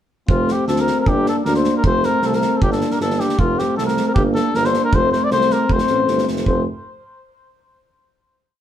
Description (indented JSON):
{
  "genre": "balkan folk, Balkan brass band",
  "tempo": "156 BPM",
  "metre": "2/4",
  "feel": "straight",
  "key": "F major",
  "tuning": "A4 = 439 Hz",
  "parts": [
    { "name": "cornet with cup mute", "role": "melody", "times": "0.3-6.6 s", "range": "F4 to D5", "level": "-20 LUFS", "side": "left 3 dB", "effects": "tape echo" },
    { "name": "mellow trombone", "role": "accompaniment", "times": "0.3-6.7 s", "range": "A3 to Bb3", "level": "-23 LUFS", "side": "right 7 dB", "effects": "none" },
    { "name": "warm euphonium", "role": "accompaniment", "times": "0.3-6.7 s", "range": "C4 to D4", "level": "-23 LUFS", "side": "left 6 dB", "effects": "none" },
    { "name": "warm tuba", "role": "bass", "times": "0.3-6.6 s", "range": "F1 to D2", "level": "-22 LUFS", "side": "equal", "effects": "none" },
    { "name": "loose indie drum kit", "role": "percussion", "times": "0.3-6.6 s", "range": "kick drum, snare drum", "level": "-22 LUFS", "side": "right 1 dB", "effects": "none" }
  ],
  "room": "wet studio reverb, RT60 0.6 s",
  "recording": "heard from further back in the room",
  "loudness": "-15 LUFS",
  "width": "side -10 dB against mid",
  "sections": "0.3-6.5 A section; 6.5-7.2 final chord",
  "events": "none",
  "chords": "0.3 F; 1.1 Gm; 1.8 F; 2.6 Gm; 3.4 F; 4.2 Gm; 4.9 F"
}